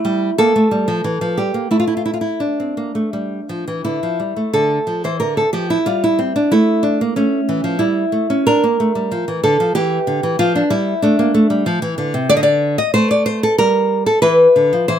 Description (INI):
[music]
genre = classical, baroque-style dance for nylon-string guitar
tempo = 83-95 BPM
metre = 3/4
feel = rubato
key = D minor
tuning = A4 = 440 Hz
[part]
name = nylon-string guitar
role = solo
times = 0.0-15.0 s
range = C3 to Eb5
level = -14 LUFS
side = equal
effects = none
[sound]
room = light reverb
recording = close, detailed microphones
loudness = -14 LUFS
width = side -9 dB against mid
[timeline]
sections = 0.0-4.5 A section; 4.5-15.0 A section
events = none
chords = 0.4 Gm; 1.7 N.C.; 2.4 Dm; 5.9 N.C.; 6.5 A7; 8.5 Dm; 9.7 Dsus24; 10.4 Dm/F; 12.3 D5; 13.6 N.C.; 14.2 E5